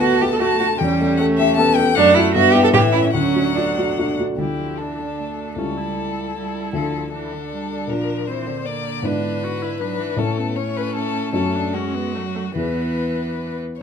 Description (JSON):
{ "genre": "quick classical-period movement for piano quartet", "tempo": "141-160 BPM", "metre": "3/4", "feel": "rubato", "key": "D major, D minor from 4.4 s", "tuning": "A4 = 443 Hz", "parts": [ { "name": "rich violin", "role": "melody", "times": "0.0-13.6 s", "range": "F#4 to A5", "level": "-24 LUFS", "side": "left 8 dB", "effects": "none" }, { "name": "rich cello", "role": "second line", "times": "0.0-13.6 s", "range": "D3 to A4", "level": "-22 LUFS", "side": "right 5 dB", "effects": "none" }, { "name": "dark grand piano", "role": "accompaniment", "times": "0.0-13.8 s", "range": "C#2 to A4", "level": "-22 LUFS", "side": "left 2 dB", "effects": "none" }, { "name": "rich viola", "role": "accompaniment", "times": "0.0-13.6 s", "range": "E3 to F#4", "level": "-26 LUFS", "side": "right 1 dB", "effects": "none" } ], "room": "moderate large studio reverb, RT60 0.9 s", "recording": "minimal, uncompressed stereo recording", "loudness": "-17 LUFS", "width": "side -7 dB against mid", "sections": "0.0-4.4 A section; 4.4-13.8 B section", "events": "none", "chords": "0.0 D (rootless); 0.8 A7/E; 2.0 D/F#; 2.3 Em/G; 2.7 A; 3.1 D; 4.4 Dm; 5.6 A7/C#; 6.7 Dm; 7.9 Bb; 9.0 E7/G#; 10.2 A; 11.4 F#m; 12.6 E" }